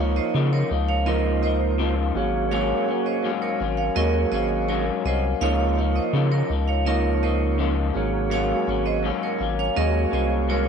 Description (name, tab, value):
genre	indie pop, bedroom pop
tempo	83 BPM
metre	4/4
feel	straight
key	Db major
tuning	A4 = 442 Hz
part	electric guitar through a small old amp	accompaniment	0.0-10.7 s	Ab2 to Eb4	-26 LUFS	left 10 dB	wide subtle chorus, vibrato effect
part	mellow tonewheel organ	accompaniment	0.0-10.7 s	Bb3 to Db5	-28 LUFS	right 12 dB	slow rotary speaker
part	round analog bass	bass	0.0-10.7 s	Ab1 to Db3	-24 LUFS	equal	none
part	vibraphone with hard mallets	second line	0.2-10.7 s	Bb4 to F5	-28 LUFS	right 8 dB	analog chorus, tape echo
room	moderate echo chamber reverb, RT60 2.1 s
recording	1960s-style stereo with parts hard left and right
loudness	-20 LUFS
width	side -6 dB against mid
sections	0.0-10.7 A section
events	none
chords	0.0 Db69; 2.2 Ab9sus4; 5.4 Db69; 8.0 Ab9sus4